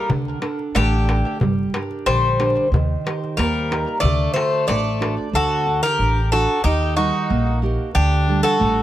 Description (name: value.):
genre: greek folk, Greek bouzouki band.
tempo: 92 BPM.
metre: 2/4.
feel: straight.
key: D phrygian dominant.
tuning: A4 = 440 Hz.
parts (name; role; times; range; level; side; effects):
Greek bouzouki; melody; 0.0-8.8 s; F#4 to D5; -22 LUFS; equal; analog delay.
Greek bouzouki; second line; 0.0-8.8 s; D3 to G4; -26 LUFS; left 4 dB; none.
nylon-string guitar; accompaniment; 0.0-8.8 s; D3 to F#5; -25 LUFS; right 4 dB; none.
upright bass; bass; 0.1-8.8 s; G1 to Eb2; -21 LUFS; equal; none.
darbuka; percussion; 0.1-5.2 s; none; -25 LUFS; left 1 dB; none.
room: little or no reverb.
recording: close, detailed microphones, vinyl crackle.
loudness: -17 LUFS.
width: side -13 dB against mid.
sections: 0.0-5.3 A section; 5.3-8.8 B section.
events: none.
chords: 0.1 D; 1.4 Gm; 2.7 Eb; 4.0 D; 6.6 Eb; 8.0 Dsus4.